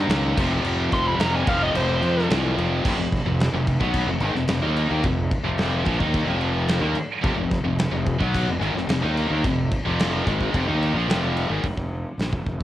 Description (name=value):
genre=hard rock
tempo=109 BPM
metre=4/4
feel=straight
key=F minor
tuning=A4 = 437 Hz
part: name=high-gain distorted guitar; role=riff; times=0.0-11.6 s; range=F2 to Eb4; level=-28 LUFS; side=right 6 dB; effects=distortion, cassette tape
part: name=high-gain distorted guitar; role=riff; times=0.0-11.6 s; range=F2 to Eb4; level=-32 LUFS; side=equal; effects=none
part: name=tight distorted guitar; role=riff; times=0.0-11.6 s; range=F2 to Eb4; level=-28 LUFS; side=left 7 dB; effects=distortion, cassette tape
part: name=fuzz fingered electric bass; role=bass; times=0.0-12.6 s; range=F1 to F2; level=-25 LUFS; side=equal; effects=overdrive
part: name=huge arena drum kit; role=drums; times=0.1-12.6 s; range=crash cymbal, hi-hat, kick drum, snare drum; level=-26 LUFS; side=equal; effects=cassette tape
part: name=smooth overdriven lead guitar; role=melody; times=0.9-2.3 s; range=C5 to C6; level=-25 LUFS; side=equal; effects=cassette tape
room=small room ambience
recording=home recording on cassette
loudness=-20 LUFS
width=side -13 dB against mid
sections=0.0-2.8 A section; 2.8-11.6 B section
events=lead electric guitar solo 0.0-2.8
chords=0.4 F5; 2.8 Fm; 11.6 N.C.